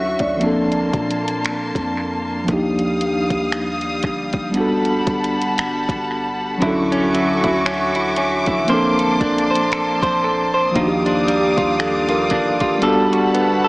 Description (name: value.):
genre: contemporary R&B.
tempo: 58 BPM.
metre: 4/4.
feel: swing 58% on 16ths.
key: unclear.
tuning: A4 = 441 Hz.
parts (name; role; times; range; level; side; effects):
mellow tine electric piano; accompaniment; 0.0-13.7 s; F3 to E5; -19 LUFS; equal; slow stereo tremolo, analog delay.
bright studio string section; sustained chords; 0.0-13.7 s; G3 to Eb6; -23 LUFS; equal; none.
soft 808-style bass; bass; 0.0-13.7 s; G1 to Bb2; -34 LUFS; equal; none.
smooth R&B drum kit; drums; 0.2-13.6 s; finger snaps, hi-hat, kick drum; -25 LUFS; equal; analog delay.
direct-recorded clean electric guitar; arpeggios; 6.6-13.7 s; D3 to C5; -19 LUFS; right 1 dB; analog delay.
room: moderate echo chamber reverb, RT60 2.6 s.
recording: echo-heavy mix, small speaker sound.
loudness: -16 LUFS.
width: side -25 dB against mid.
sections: 0.0-13.7 A section.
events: none.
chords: 0.4 Bbmaj9; 2.5 Ebmaj9; 4.6 Gmaj9; 6.6 Dmaj9; 8.7 Bbmaj9; 10.8 Ebmaj9; 12.8 Gmaj9.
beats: 0.41 1.45 | 2.48 3.52 4.55 5.59 | 6.62 7.66 8.69 9.72 | 10.76 11.79 12.83.